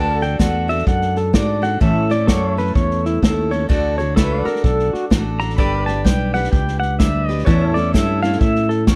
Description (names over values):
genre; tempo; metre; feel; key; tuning
honky-tonk and classic country; 127 BPM; 4/4; swing 62% on 8ths; D major; A4 = 440 Hz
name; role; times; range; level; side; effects
pedal steel guitar; second line; 0.0-9.0 s; E4 to B5; -24 LUFS; equal; none
picked steel-string acoustic guitar; accompaniment; 0.0-9.0 s; A2 to B4; -25 LUFS; equal; none
pedal steel guitar; sustained chords; 0.0-9.0 s; A4 to G5; -31 LUFS; equal; none
fingered electric bass; bass; 0.0-9.0 s; G1 to A2; -23 LUFS; equal; none
unplugged drum kit; drums; 0.2-9.0 s; hi-hat, kick drum, snare drum; -20 LUFS; equal; none
room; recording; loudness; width
little or no reverb; none; -18 LUFS; mono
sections
0.0-9.0 A section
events
pedal steel guitar solo 0.0-9.0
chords
0.0 D; 1.8 A; 3.7 D; 5.6 G; 7.5 A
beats
0.40 0.87 1.34 | 1.82 2.29 2.76 3.23 | 3.70 4.17 4.65 5.12 | 5.59 6.06 6.53 7.00 | 7.47 7.94 8.41 8.88